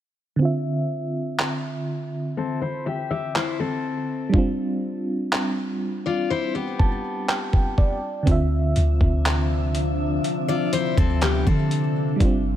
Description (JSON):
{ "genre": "contemporary R&B", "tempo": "61 BPM", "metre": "4/4", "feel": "straight", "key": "unclear", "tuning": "A4 = 440 Hz", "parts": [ { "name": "FM electric piano with tremolo", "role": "accompaniment", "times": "0.4-12.6 s", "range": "D3 to A5", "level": "-26 LUFS", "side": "right 2 dB", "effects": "low-pass filter" }, { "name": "dusty soul sampler-style drum kit", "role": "drums", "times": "1.4-12.4 s", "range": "handclaps, hi-hat, kick drum", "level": "-22 LUFS", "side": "equal", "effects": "overdrive" }, { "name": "picked steel-string acoustic guitar", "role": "arpeggios", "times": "2.4-12.2 s", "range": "B3 to E5", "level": "-26 LUFS", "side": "left 6 dB", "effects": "low-pass filter, digital delay" }, { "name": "glassy FM pad", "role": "sustained chords", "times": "8.3-12.6 s", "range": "C3 to E5", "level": "-27 LUFS", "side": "left 2 dB", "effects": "ensemble chorus, built-in reverb, sidechain pumping" }, { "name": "soft 808-style bass", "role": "bass", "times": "8.3-12.6 s", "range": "G1 to D3", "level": "-22 LUFS", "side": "equal", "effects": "none" } ], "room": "little or no reverb", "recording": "none", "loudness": "-21 LUFS", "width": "side -11 dB against mid", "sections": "0.4-8.3 A section; 8.3-12.6 B section", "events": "filter sweep 0.4-8.3; FM electric piano fill 6.3-8.3", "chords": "0.4 Dm9; 4.3 G7sus4; 8.3 Dm9" }